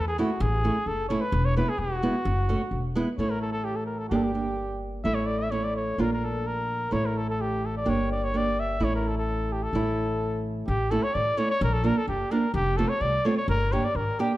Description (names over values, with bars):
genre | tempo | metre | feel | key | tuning
klezmer | 128 BPM | 2/4 | straight | A phrygian dominant from 3.2 s | A4 = 440 Hz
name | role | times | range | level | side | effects
warm cornet | melody | 0.0-14.4 s | F#4 to E5 | -28 LUFS | equal | none
upright bass | bass | 0.0-14.1 s | E1 to E2 | -29 LUFS | equal | none
nylon-string guitar | accompaniment | 0.2-14.3 s | G#3 to G4 | -28 LUFS | right 2 dB | none
room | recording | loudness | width
moderate recital hall reverb, RT60 1.5 s | dark, warm production | -24 LUFS | side -16 dB against mid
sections
0.0-3.2 A section; 3.2-10.7 B section; 10.7-14.4 C section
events
none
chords
0.0 A; 1.3 E; 2.3 F#m; 2.7 E; 3.2 A; 4.1 Gm; 5.0 A; 6.0 Bb; 6.9 A; 7.9 Gm; 8.8 A; 11.6 Bb; 12.6 F; 13.5 Gm